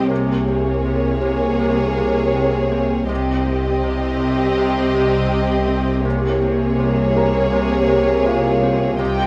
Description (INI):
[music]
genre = cinematic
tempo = 81 BPM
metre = 4/4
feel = straight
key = unclear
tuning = A4 = 441 Hz
[part]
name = warm symphonic violin section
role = melody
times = 0.0-9.3 s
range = Db5 to Eb5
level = -27 LUFS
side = equal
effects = none
[part]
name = rich symphonic violin section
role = second line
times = 0.0-9.3 s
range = G4 to Ab4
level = -28 LUFS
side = equal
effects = none
[part]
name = rich symphonic viola section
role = accompaniment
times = 0.0-9.3 s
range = Bb3 to C4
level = -25 LUFS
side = equal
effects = none
[part]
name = Celtic harp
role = riff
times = 0.0-9.3 s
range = C3 to C4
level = -26 LUFS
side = equal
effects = none
[part]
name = rich symphonic double bass section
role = bass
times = 0.0-9.3 s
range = C2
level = -28 LUFS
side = equal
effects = none
[part]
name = warm symphonic cello section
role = bass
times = 0.0-9.3 s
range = C3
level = -27 LUFS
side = equal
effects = none
[part]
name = analog drone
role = drone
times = 0.0-9.3 s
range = C2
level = -26 LUFS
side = equal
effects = chorus
[part]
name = felt-muted upright piano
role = texture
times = 0.0-9.3 s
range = F4 to Bb5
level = -31 LUFS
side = equal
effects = none
[part]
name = warm symphonic violin section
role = texture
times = 9.0-9.3 s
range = G5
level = -26 LUFS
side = equal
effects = none
[sound]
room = moderate scoring stage reverb, RT60 1.6 s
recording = none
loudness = -18 LUFS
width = mono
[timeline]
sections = 0.0-9.3 A section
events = none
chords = 0.1 Bbm7/C; 3.1 Cm; 6.0 Bbm7/C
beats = | 0.10 0.85 1.60 2.35 | 3.09 3.83 4.57 5.31 | 6.05 6.79 7.52 8.26 | 8.99